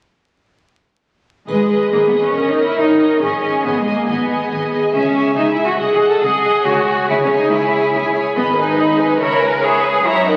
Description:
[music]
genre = classical, dramatic, fast romantic movement for symphony orchestra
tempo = 140 BPM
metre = 4/4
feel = rubato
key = G# minor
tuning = A4 = 440 Hz
[part]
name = warm symphonic violin section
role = melody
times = 1.5-10.4 s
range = D#5 to B5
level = -26 LUFS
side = equal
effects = none
[part]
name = rich symphonic violin section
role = second line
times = 1.5-10.4 s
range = B4 to E5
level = -27 LUFS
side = equal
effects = none
[part]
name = warm symphonic viola section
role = accompaniment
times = 1.5-10.4 s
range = G#4 to C#5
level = -20 LUFS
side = equal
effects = none
[part]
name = clear symphonic double bass section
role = bass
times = 1.5-10.4 s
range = G1 to F#2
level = -30 LUFS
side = equal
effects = none
[part]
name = rich symphonic cello section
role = bass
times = 1.5-10.4 s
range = G#3 to A#4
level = -19 LUFS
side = equal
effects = none
[part]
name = triangle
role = percussion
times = 1.5-2.3 s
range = none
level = -52 LUFS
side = equal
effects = none
[sound]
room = wet scoring stage reverb, RT60 1.6 s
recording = very old 78 rpm record, vinyl crackle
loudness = -16 LUFS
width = mono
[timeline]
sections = 1.5-10.4 A section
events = none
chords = 1.5 G#m; 2.3 D#7/G; 3.2 G#m; 4.9 C#m; 5.8 G#7/B#; 6.7 C#m; 8.4 G#m; 9.2 C#m7

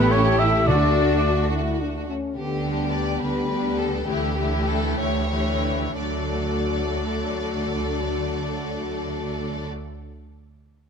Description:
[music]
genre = quick classical-period movement for symphony orchestra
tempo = 59-73 BPM (dotted quarters)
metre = 6/8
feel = straight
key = D major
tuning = A4 = 440 Hz
[part]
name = clear chamber violin section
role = second line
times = 0.0-9.7 s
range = A3 to A4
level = -30 LUFS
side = left 2 dB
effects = none
[part]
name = mellow hollow silver concert flute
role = second line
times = 0.0-1.5 s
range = B5 to E6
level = -28 LUFS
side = equal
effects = none
[part]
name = warm clarinet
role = second line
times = 0.0-1.5 s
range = B4 to E5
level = -26 LUFS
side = equal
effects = none
[part]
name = warm oboe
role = second line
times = 0.0-1.5 s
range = B4 to E5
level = -29 LUFS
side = right 2 dB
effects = none
[part]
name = rich chamber viola section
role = accompaniment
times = 0.0-9.7 s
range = E3 to F#4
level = -30 LUFS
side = right 1 dB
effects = none
[part]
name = mellow French horn section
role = sustained chords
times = 0.0-9.7 s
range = A3 to G4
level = -28 LUFS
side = left 6 dB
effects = none
[part]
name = rich chamber double bass section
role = bass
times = 0.0-9.7 s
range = A1 to D2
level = -27 LUFS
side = right 3 dB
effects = none
[part]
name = rich studio cello section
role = bass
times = 0.0-9.7 s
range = D3 to E4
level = -30 LUFS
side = equal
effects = none
[part]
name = rich chamber violin section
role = melody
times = 0.1-9.7 s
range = E4 to D5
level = -32 LUFS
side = left 4 dB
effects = none
[part]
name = timpani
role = percussion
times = 0.7-1.5 s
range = D3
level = -26 LUFS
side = equal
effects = none
[sound]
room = light reverb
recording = close, detailed microphones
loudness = -21 LUFS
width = side -6 dB against mid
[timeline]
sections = 0.0-2.4 A section; 2.4-6.0 B section; 6.0-10.0 C section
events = slowing down 1.5-6.0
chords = 0.0 A7; 0.7 D; 2.4 G/D; 4.1 A7/D; 6.0 D

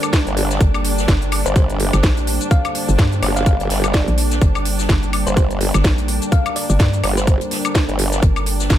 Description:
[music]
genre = bass house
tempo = 126 BPM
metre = 4/4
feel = swing 57% on 16ths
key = G minor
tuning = A4 = 440 Hz
[part]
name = thumb-piano-like synth pluck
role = melody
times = 0.0-7.8 s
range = C5 to F5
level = -27 LUFS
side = equal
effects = chorus, ping-pong delay
[part]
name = deep dark ambient pad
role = sustained chords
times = 0.0-8.8 s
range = G3 to C5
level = -25 LUFS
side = left 1 dB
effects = chorus, built-in reverb, sidechain pumping
[part]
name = garage drum kit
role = drums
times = 0.0-8.8 s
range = hi-hat, shaker, snare drum, woodblock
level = -23 LUFS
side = left 1 dB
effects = none
[part]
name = muted studio string section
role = texture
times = 0.0-8.8 s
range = Bb3 to A5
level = -28 LUFS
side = right 2 dB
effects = sidechain pumping
[part]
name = electronic kick drum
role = drums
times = 0.1-8.8 s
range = none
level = -16 LUFS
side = equal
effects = none
[part]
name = open jazz drum kit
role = drums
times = 0.1-8.8 s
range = hi-hat, snare drum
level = -31 LUFS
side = left 2 dB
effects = high-pass filter on hats, high-pass filter on snare, high-pass filter on room
[part]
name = formant-sweep wobble bass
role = bass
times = 0.3-8.2 s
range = G1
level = -20 LUFS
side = equal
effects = chorus, overdrive, sidechain pumping
[part]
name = hollow knocking FM bass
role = bass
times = 0.6-8.8 s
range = G1 to G2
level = -18 LUFS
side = equal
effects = overdrive, sidechain pumping
[sound]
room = digital ambience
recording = none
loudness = -14 LUFS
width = side -12 dB against mid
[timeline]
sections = 0.0-8.8 A section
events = none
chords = 0.0 Gmadd9

